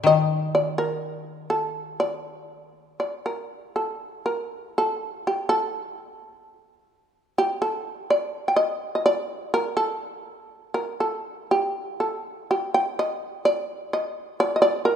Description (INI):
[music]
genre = japanese traditional, Japanese chamber music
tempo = 58-66 BPM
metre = 2/4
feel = rubato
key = unclear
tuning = A4 = 440 Hz
[part]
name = shamisen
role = melody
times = 0.0-15.0 s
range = G4 to G5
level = -23 LUFS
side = equal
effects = none
[part]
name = koto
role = accompaniment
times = 0.0-3.0 s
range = Eb3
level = -25 LUFS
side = left 5 dB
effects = none
[sound]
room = moderate concert hall reverb, RT60 2.4 s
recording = minimal, uncompressed stereo recording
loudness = -23 LUFS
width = side -8 dB against mid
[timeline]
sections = 0.0-4.0 A section; 4.0-15.0 B section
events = none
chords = none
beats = | 0.07 1.03 | 2.00 3.00 | 4.02 5.01 | 5.96 6.91 | 7.86 8.80 | 9.74 10.72 | 11.73 12.73 | 13.69 14.62